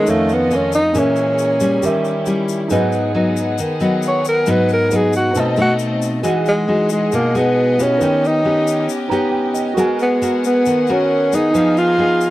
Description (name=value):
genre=bossa nova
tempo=136 BPM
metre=4/4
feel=straight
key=G# minor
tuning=A4 = 441 Hz
part: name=breathy tenor saxophone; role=melody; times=0.0-12.3 s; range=G#3 to C#5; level=-16 LUFS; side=equal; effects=none
part: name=nylon-string guitar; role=accompaniment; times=0.0-12.3 s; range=F2 to A#4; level=-18 LUFS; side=left 1 dB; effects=none
part: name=warm concert grand piano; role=accompaniment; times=0.0-12.3 s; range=C#4 to A#5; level=-24 LUFS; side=right 4 dB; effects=none
part: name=rich chamber violin section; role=sustained chords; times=0.0-12.3 s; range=A#3 to F#5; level=-27 LUFS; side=left 3 dB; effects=none
part: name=egg shaker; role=percussion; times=0.1-12.3 s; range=none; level=-34 LUFS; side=left 13 dB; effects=none
room=light reverb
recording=dry, close 1970s-style studio recording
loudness=-14 LUFS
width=side -16 dB against mid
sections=0.0-6.2 A section; 6.2-12.3 B section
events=tenor saxophone solo 0.0-6.2; grand piano fill 8.9-9.8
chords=0.1 Faug7; 0.9 A#m7b5; 1.8 D#7b9; 2.7 G#m7; 5.4 B7b9; 6.2 Emaj9; 8.0 D#7b13; 9.8 G#m9; 11.5 Fm7b5